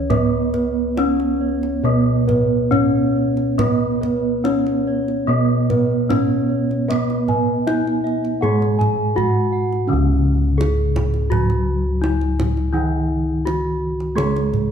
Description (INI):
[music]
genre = Javanese gamelan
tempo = 69-84 BPM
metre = 4/4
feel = straight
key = C# slendro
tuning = A4 = 442 Hz
[part]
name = gamelan-type bronze metallophone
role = melody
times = 0.0-14.7 s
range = B3-40c to G#4+20c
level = -22 LUFS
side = left 2 dB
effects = none
[part]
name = gamelan-type bronze metallophone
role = accompaniment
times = 0.0-14.7 s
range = C#3 to B3-40c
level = -23 LUFS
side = right 4 dB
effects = none
[part]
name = gamelan-type bronze metallophone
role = arpeggios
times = 0.0-9.9 s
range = B4-40c to G#5+20c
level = -29 LUFS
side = right 6 dB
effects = none
[part]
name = gamelan-type bossed gongs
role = bass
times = 0.0-14.7 s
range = C#2 to B4-40c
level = -22 LUFS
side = left 1 dB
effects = none
[part]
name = gamelan-type bossed gongs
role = arpeggios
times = 0.1-9.6 s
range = B4-40c to G#5+20c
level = -27 LUFS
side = left 2 dB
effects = none
[part]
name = kendang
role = percussion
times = 0.1-14.7 s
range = none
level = -25 LUFS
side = right 3 dB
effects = none
[sound]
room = moderate recital hall reverb, RT60 1.6 s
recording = dark, warm production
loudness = -16 LUFS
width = side -7 dB against mid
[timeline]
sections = 0.0-9.9 A section; 9.9-14.7 B section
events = none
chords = none